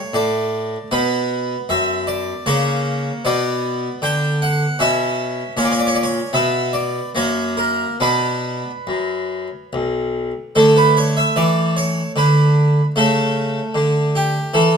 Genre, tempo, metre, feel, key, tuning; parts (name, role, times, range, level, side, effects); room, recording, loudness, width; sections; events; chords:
classical, baroque-style suite movement for harpsichord; 76 BPM; 3/4; rubato; B minor; A4 = 441 Hz
harpsichord; solo; 0.0-14.8 s; B1 to G5; -16 LUFS; equal
wet stone room reverb, RT60 1.1 s; heard from further back in the room; -16 LUFS; side -6 dB against mid
0.0-10.6 A section; 10.6-14.8 A section
0.0 D5; 0.9 B5; 2.5 A#m/C#; 3.3 Bm; 4.8 Bsus24; 5.6 A#m; 6.3 N.C.; 7.2 F#; 8.0 Bm; 10.6 D5; 13.0 A/C#